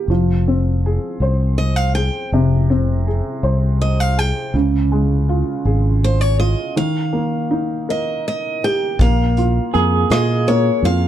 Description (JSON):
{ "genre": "acoustic folk-pop ballad", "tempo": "54 BPM (dotted quarters)", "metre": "6/8", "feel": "straight", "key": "F minor", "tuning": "A4 = 444 Hz", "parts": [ { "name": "felt-muted upright piano", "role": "accompaniment", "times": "0.0-11.1 s", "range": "C3 to C5", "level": "-20 LUFS", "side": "equal", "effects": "none" }, { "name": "fingered electric bass", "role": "bass", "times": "0.1-11.1 s", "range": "F1 to Bb2", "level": "-17 LUFS", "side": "equal", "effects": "none" }, { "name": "picked steel-string acoustic guitar", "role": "melody", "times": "1.6-11.1 s", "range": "C5 to G5", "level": "-22 LUFS", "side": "equal", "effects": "none" }, { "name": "vintage brush drum kit", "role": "drums", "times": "9.0-11.0 s", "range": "hi-hat, kick drum, rim click", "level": "-18 LUFS", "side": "equal", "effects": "none" }, { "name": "electric guitar through a small old amp", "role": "arpeggios", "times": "9.7-11.1 s", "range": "Ab4", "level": "-21 LUFS", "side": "right 8 dB", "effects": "tremolo" } ], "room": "little or no reverb", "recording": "dark, warm production", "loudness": "-15 LUFS", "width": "side -11 dB against mid", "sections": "0.0-9.0 A section; 9.0-11.1 B section", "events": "break 6.8-9.0", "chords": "0.1 Fm; 4.5 Db; 6.8 Ebadd9; 9.0 Bb5", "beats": "| 0.10 1.21 | 2.32 3.44 | 4.54 5.65 | 6.77 7.88 | 9.00 10.11" }